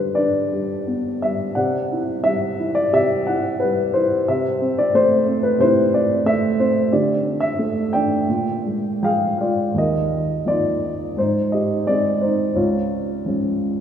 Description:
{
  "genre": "classical, lyrical solo piano",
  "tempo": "78-93 BPM",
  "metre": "4/4",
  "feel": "rubato",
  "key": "unclear",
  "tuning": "A4 = 440 Hz",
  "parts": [
    { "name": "dark upright piano", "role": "solo", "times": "0.0-13.8 s", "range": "Db2 to G5", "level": "-17 LUFS", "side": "equal", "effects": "none" }
  ],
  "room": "wet church reverb, RT60 3.7 s",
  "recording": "recorded in a church or concert hall",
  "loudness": "-17 LUFS",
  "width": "side -8 dB against mid",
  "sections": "0.0-9.8 A section; 9.8-13.8 B section",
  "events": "upright piano fill 8.6-9.8",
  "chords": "0.0 G; 1.6 Cadd9; 4.3 Am/C; 6.9 Dsus4; 8.3 Bb7; 9.8 Ebsus2; 11.2 Ab; 12.6 Db"
}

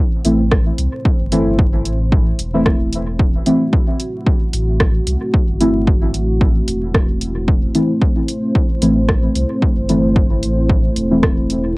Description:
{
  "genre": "dub techno",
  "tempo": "112 BPM",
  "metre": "4/4",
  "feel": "swing 55% on 16ths",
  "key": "A dorian",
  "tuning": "A4 = 442 Hz",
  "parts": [
    { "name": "dark analog pad", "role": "sustained chords", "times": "0.0-11.8 s", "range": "A3 to C5", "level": "-23 LUFS", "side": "equal", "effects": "chorus, sidechain pumping, cassette tape" },
    { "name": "deep mellow chord stab", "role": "stabs", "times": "0.2-11.8 s", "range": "E3 to E4", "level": "-18 LUFS", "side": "equal", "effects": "chorus, phaser, vintage 12-bit sampler grit, sidechain pumping, cassette tape, dub echo" },
    { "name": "warm sub bass", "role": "bass", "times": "0.2-11.8 s", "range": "E1 to C2", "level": "-20 LUFS", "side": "equal", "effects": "sidechain pumping" },
    { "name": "punchy analog drum machine", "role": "drums", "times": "0.2-11.6 s", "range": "hi-hat, rim click", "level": "-22 LUFS", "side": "equal", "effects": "overdrive, cassette tape, dub echo" },
    { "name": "electronic kick drum", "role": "drums", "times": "0.5-11.3 s", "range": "none", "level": "-15 LUFS", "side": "equal", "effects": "overdrive, cassette tape" }
  ],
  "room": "light reverb",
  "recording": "home recording on cassette, vinyl crackle",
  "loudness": "-13 LUFS",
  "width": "side -23 dB against mid",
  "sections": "0.0-11.8 A section",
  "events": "none",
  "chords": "0.0 Am"
}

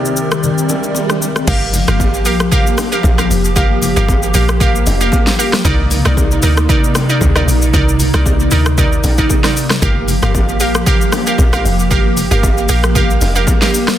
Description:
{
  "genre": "amapiano",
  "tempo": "115 BPM",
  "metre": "4/4",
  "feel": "swing 55% on 16ths",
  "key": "G minor",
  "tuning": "A4 = 444 Hz",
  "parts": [
    { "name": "clear concert grand piano", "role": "accompaniment", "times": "0.0-1.5 s", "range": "C3 to G4", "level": "-22 LUFS", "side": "right 3 dB", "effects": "none" },
    { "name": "hollow soft pad", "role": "sustained chords", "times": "0.0-14.0 s", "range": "C3 to D5", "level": "-18 LUFS", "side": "left 1 dB", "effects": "ensemble chorus" },
    { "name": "swell", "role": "sound effects", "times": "0.1-1.5 s", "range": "none", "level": "-24 LUFS", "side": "right 3 dB", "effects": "none" },
    { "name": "deep house drum kit", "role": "drums", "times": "0.1-14.0 s", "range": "crash cymbal, hi-hat, kick drum, rim click, shaker, snare drum", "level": "-15 LUFS", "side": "equal", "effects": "soft clipping on snare" },
    { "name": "congas and bongos", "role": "percussion", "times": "0.4-13.7 s", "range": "none", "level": "-24 LUFS", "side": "left 3 dB", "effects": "none" },
    { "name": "glassy wavetable pluck", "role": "stabs", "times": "1.5-13.7 s", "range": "Eb4 to F5", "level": "-18 LUFS", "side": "right 3 dB", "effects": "chorus, digital delay" },
    { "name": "deep log drum bass", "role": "bass", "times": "1.5-13.5 s", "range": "F1 to D2", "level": "-15 LUFS", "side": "equal", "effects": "none" }
  ],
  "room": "little or no reverb",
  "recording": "dense, heavily limited modern master",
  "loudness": "-11 LUFS",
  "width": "side -12 dB against mid",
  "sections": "0.0-1.5 A section; 1.5-14.0 B section",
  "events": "break 0.0-1.5; swell 0.1-1.5; drop 1.5-14.0",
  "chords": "0.0 Cm9; 1.5 Gm7; 5.6 Cm9; 9.8 Gm7"
}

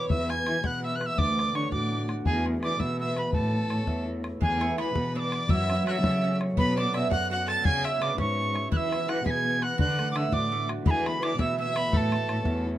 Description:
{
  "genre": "celtic folk, Celtic jig",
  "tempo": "112 BPM (dotted quarters)",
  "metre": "6/8",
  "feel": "straight",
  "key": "unclear",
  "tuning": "A4 = 439 Hz",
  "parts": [
    { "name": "bright wooden whistle", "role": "melody", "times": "0.0-12.7 s", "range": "G#5 to B6", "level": "-30 LUFS", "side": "right 1 dB", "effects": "none" },
    { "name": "rich fiddle", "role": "second line", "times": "0.0-12.7 s", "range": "G#4 to A5", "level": "-35 LUFS", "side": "left 2 dB", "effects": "none" },
    { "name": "concert harp", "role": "accompaniment", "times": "0.0-12.8 s", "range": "D3 to F#5", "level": "-32 LUFS", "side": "equal", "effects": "none" },
    { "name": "dark cello", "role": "bass", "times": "0.0-12.8 s", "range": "D2 to F#3", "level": "-30 LUFS", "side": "equal", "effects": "none" },
    { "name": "bodhran", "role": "percussion", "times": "0.1-12.5 s", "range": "none", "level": "-28 LUFS", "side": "left 1 dB", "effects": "none" },
    { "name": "mandolin", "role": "second line", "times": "4.4-12.6 s", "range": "G#3 to A4", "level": "-35 LUFS", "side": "right 9 dB", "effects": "none" }
  ],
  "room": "light reverb",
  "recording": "minimal, uncompressed stereo recording",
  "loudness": "-24 LUFS",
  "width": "side -13 dB against mid",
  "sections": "0.0-4.4 A section; 4.4-12.8 A section",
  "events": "none",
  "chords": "0.0 E; 1.2 D; 2.3 E; 3.3 A; 4.4 E; 5.5 F#m; 6.6 Bm; 7.6 C#m7; 8.7 E; 9.8 D; 10.9 E; 11.9 A"
}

